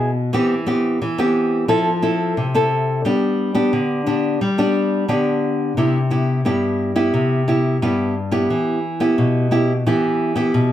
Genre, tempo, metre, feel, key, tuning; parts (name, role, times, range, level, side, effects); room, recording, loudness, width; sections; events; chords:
samba; 88 BPM; 4/4; straight; C major; A4 = 440 Hz
nylon-string guitar; solo; 0.0-10.7 s; G2 to A4; -16 LUFS; equal
wet studio reverb, RT60 0.6 s; heard from further back in the room; -16 LUFS; side -11 dB against mid
0.0-5.8 A section; 5.8-10.7 B section
0.3 Cmaj7/E; 1.7 Fmaj7; 3.0 G; 5.8 Cmaj7; 8.5 Em